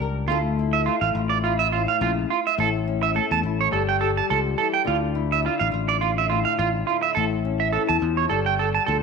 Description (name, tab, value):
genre	highlife guitar band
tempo	105 BPM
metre	4/4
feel	swing 55% on 16ths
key	D harmonic minor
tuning	A4 = 436 Hz
part	flamenco guitar	accompaniment	0.0-9.0 s	A2 to Bb4	-27 LUFS	left 14 dB	none
part	fingered electric bass	bass	0.0-9.0 s	G1 to E2	-26 LUFS	left 2 dB	none
part	electric guitar at the edge of break-up	arpeggios	0.3-9.0 s	F4 to A5	-22 LUFS	right 9 dB	slapback echo
room	moderate echo chamber reverb, RT60 1.5 s, small room ambience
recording	1960s-style stereo with parts hard left and right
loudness	-20 LUFS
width	side -5 dB against mid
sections	0.3-9.0 A section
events	none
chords	0.3 Dmadd9; 2.6 A; 3.7 Gsus2; 4.9 Dmadd9; 7.2 A; 8.3 Gsus2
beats	| 0.29 0.86 1.44 2.01 | 2.58 3.15 3.73 4.30 | 4.87 5.44 6.02 6.59 | 7.16 7.73 8.31 8.88